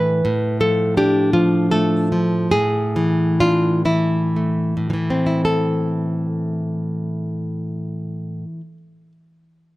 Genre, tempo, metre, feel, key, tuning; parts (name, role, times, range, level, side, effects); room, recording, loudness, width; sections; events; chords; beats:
romantic piece for solo classical guitar; 35-57 BPM (dotted quarters); 6/8; rubato; A minor; A4 = 439 Hz
nylon-string guitar; solo; 0.0-9.1 s; A2 to B4; -17 LUFS; equal
light reverb; close, detailed microphones; -17 LUFS; side -18 dB against mid
0.0-5.5 A section; 5.5-9.8 B section
slowing down 0.0-5.5
0.2 Dm/A; 2.5 E7/A; 5.5 Am
| 0.24 1.31 | 2.50 3.85 | 5.46 6.98 | 8.51